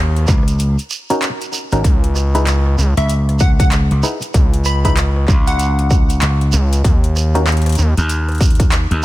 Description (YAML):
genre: glitch hop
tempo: 96 BPM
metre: 4/4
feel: swing 61% on 16ths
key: unclear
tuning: A4 = 441 Hz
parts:
  - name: gritty driven synth bass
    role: bass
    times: 0.0-7.9 s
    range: C#2 to D#2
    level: -14 LUFS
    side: equal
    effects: tube saturation
  - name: dubstep drum kit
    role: drums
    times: 0.2-9.0 s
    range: handclaps, hi-hat, rim click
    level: -24 LUFS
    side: left 1 dB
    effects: small room ambience
  - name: gritty slap bass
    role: bass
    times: 0.3-9.0 s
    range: G#1 to D#2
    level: -15 LUFS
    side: equal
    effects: overdrive
  - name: electronic kick drum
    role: drums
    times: 0.3-8.7 s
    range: none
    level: -14 LUFS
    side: equal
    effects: small room ambience
  - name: shekere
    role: percussion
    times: 0.3-9.0 s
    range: none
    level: -27 LUFS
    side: right 6 dB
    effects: none
  - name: muted clav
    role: stabs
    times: 1.1-7.5 s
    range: C#4 to B4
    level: -22 LUFS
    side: equal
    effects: sidechain pumping, tape echo
  - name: plucky unison lead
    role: melody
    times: 3.0-6.1 s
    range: E5 to B5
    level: -24 LUFS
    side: equal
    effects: tape echo
room: little or no reverb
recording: none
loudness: -12 LUFS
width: side -16 dB against mid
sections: 0.0-9.0 A section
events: break 0.6-1.8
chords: 0.0 D#m7; 1.8 N.C.